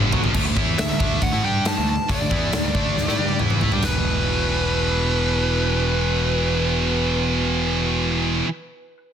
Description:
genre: heavy metal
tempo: 137 BPM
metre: 4/4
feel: straight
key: E minor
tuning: A4 = 439 Hz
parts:
  - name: heavy high-gain guitar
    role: riff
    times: 0.0-8.5 s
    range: E2 to G4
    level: -26 LUFS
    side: left 11 dB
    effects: distortion
  - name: heavy high-gain guitar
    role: riff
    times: 0.0-8.5 s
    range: E2 to G4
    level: -25 LUFS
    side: right 12 dB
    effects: distortion
  - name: growling picked electric bass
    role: bass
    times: 0.0-8.4 s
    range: E1 to A2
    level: -25 LUFS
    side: equal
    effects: overdrive
  - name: big rock drum kit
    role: drums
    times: 0.1-3.9 s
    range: crash cymbal, hi-hat, kick drum, snare drum, splash cymbal, toms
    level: -23 LUFS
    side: left 1 dB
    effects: soft clipping on snare
  - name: high-gain lead guitar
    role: melody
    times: 0.8-8.1 s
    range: B4 to A5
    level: -26 LUFS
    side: right 1 dB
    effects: distortion, tape echo
room: studio ambience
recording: dense, heavily limited modern master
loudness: -18 LUFS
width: side -8 dB against mid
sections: 0.4-3.8 A section; 3.8-7.3 B section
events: drum fill 0.0-0.4, 3.0-3.8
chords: 0.4 D5; 3.8 E5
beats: | 0.35 0.79 1.22 1.66 | 2.09 2.53 2.96 3.40 | 3.84 4.27 4.71 5.15 | 5.58 6.02 6.46 6.90

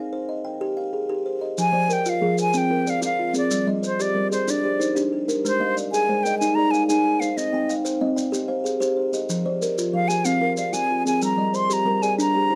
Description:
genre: southern african traditional, mbira-style interlocking cycle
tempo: 124 BPM (dotted quarters)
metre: 12/8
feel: straight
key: F dorian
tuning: A4 = 440 Hz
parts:
  - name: buzzing kalimba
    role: arpeggios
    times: 0.0-12.6 s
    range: F3 to Ab5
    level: -27 LUFS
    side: equal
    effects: none
  - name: bright silver concert flute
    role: melody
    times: 1.6-12.6 s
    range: C5 to C6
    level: -25 LUFS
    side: equal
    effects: none
  - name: maracas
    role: percussion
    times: 1.6-12.3 s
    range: none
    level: -35 LUFS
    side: equal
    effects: none
  - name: kalimba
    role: arpeggios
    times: 1.7-12.6 s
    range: F3 to G5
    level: -28 LUFS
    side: equal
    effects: none
room: light reverb, small room ambience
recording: dry, close 1970s-style studio recording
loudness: -23 LUFS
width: mono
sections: 0.0-1.6 A section; 1.6-12.6 A section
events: none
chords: 0.0 Cm; 1.6 Fm; 3.5 Gm; 5.4 Ab; 7.4 Cm; 9.3 Fm; 11.2 Gm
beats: 0.12 0.61 1.09 | 1.58 2.06 2.55 3.03 | 3.52 4.00 4.48 4.97 | 5.45 5.93 6.41 6.89 | 7.38 7.86 8.34 8.82 | 9.30 9.78 10.26 10.74 | 11.22 11.70 12.19

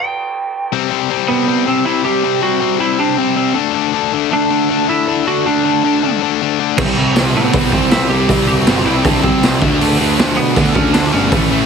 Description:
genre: punk rock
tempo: 159 BPM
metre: 4/4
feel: straight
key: unclear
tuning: A4 = 439 Hz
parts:
  - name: lightly driven lead guitar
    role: melody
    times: 0.0-11.7 s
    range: B3 to G5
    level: -17 LUFS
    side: right 4 dB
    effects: none
  - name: distorted electric guitar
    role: riff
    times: 0.7-11.7 s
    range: A2 to D4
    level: -16 LUFS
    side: left 16 dB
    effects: overdrive
  - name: sludgy distorted guitar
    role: riff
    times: 6.8-11.7 s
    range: A2 to D4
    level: -19 LUFS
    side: right 14 dB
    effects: overdrive
  - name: thick fuzz guitar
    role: riff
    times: 6.8-11.7 s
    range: A2 to D4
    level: -22 LUFS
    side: right 1 dB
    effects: none
  - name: fuzz picked electric bass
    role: bass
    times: 6.8-11.7 s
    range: G1 to B2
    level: -20 LUFS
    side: equal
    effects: overdrive
  - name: raw garage drum kit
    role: drums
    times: 6.8-11.4 s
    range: crash cymbal, hi-hat, kick drum, snare drum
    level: -17 LUFS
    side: right 1 dB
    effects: none
room: light reverb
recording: heavily compressed radio sound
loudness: -12 LUFS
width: side -6 dB against mid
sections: 0.7-11.7 A section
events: stop 0.0-0.7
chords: 0.0 N.C.; 0.7 C5; 3.6 D5; 6.8 C5; 9.6 D5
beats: 0.34 | 0.72 1.10 1.48 1.86 | 2.24 2.62 3.00 3.37 | 3.75 4.13 4.51 4.89 | 5.26 5.64 6.02 6.40 | 6.78 7.16 7.54 7.91 | 8.29 8.67 9.05 9.43 | 9.80 10.18 10.56 10.94 | 11.32

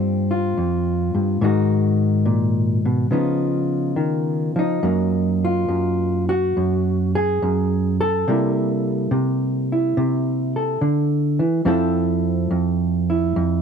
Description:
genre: solo jazz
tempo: 71 BPM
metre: 4/4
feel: swing 69% on 8ths, rubato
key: unclear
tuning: A4 = 440 Hz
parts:
  - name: hollow-body jazz guitar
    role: solo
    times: 0.0-13.6 s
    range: F2 to A4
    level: -18 LUFS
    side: equal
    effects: none
room: light reverb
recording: dry, close 1970s-style studio recording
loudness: -18 LUFS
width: side -6 dB against mid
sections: 0.0-13.6 A section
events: none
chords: 0.0 Gm7; 1.4 Abm9; 3.1 Db9; 4.8 Gbmaj13; 8.3 C13; 11.7 Fmaj7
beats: 0.55 | 1.40 2.25 3.10 3.97 | 4.83 5.70 6.56 7.42 | 8.27 9.12 9.97 10.82 | 11.66 12.50 13.35

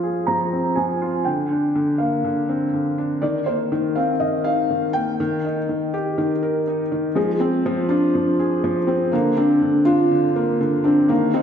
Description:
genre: piano and strings electronica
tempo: 122 BPM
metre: 4/4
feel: straight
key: F dorian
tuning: A4 = 440 Hz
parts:
  - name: felt-muted upright piano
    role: melody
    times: 0.0-11.4 s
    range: Ab3 to Bb5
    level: -22 LUFS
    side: equal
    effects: none
  - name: felt-muted upright piano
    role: riff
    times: 0.0-11.4 s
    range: D3 to Bb4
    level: -20 LUFS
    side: equal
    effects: tape echo
room: wet recital hall reverb, RT60 1.5 s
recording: low-pass filter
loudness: -18 LUFS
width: side -8 dB against mid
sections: 0.0-7.2 A section; 7.2-11.4 B section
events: build-up 7.2-11.4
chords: 0.0 Fm; 1.3 Bbadd9; 3.2 Ebsus2; 5.2 Eb; 7.2 Fm; 9.1 Bbadd9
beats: 0.28 0.77 | 1.26 1.75 2.25 2.74 | 3.23 3.72 4.21 4.71 | 5.20 5.69 6.18 6.67 | 7.16 7.66 8.15 8.64 | 9.13 9.62 10.12 10.61 | 11.10

